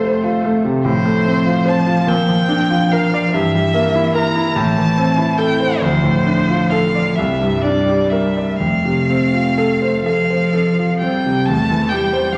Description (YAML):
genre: classical, slow romantic movement for piano trio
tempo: 40-50 BPM (dotted quarters)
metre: 6/8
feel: rubato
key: F major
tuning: A4 = 440 Hz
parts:
  - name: clear violin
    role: melody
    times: 0.0-12.4 s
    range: C5 to Bb5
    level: -23 LUFS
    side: equal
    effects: none
  - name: rich cello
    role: second line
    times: 0.0-12.4 s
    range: E3 to A3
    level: -22 LUFS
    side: equal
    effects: none
  - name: clear grand piano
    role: accompaniment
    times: 0.0-12.4 s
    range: C2 to D5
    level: -19 LUFS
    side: equal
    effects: none
room: wet recital hall reverb, RT60 1.7 s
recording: none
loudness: -16 LUFS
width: mono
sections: 0.0-11.5 A section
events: none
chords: 0.0 F; 0.9 F/A; 2.1 Bb; 3.3 Edim/G; 4.6 Am; 5.8 Dm7; 7.2 Csus2; 8.6 F; 11.5 C/E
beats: | 0.85 2.09 | 3.34 4.56 | 5.82 7.17 | 8.60 10.06 | 11.48